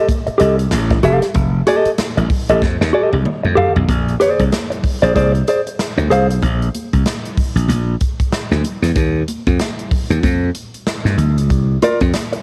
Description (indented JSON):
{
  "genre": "funk",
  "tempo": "95 BPM",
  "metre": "4/4",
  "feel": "swing 60% on 16ths",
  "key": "unclear",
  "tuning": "A4 = 444 Hz",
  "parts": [
    { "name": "mellow electric guitar", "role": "accompaniment", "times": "0.0-6.3, 11.8-12.4 s", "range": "F4 to F5", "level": "-18 LUFS", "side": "equal", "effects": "cassette tape" },
    { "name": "swinging big-band drum kit", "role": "drums", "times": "0.1-12.4 s", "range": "hi-hat, kick drum, snare drum, toms", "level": "-22 LUFS", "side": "equal", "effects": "cassette tape" },
    { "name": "congas", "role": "percussion", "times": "0.1-12.3 s", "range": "none", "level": "-30 LUFS", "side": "equal", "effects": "none" },
    { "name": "slap bass", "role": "bass", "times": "0.3-12.1 s", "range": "F1 to G2", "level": "-18 LUFS", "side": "equal", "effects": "none" }
  ],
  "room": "light reverb, studio reverb",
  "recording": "home recording on cassette",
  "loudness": "-16 LUFS",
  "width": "mono",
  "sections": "0.0-3.9 A section; 3.9-12.4 B section",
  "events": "drum fill 2.6-3.9",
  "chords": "0.0 F9; 3.9 Bb9; 9.0 Eb7sus2; 11.5 C9sus4"
}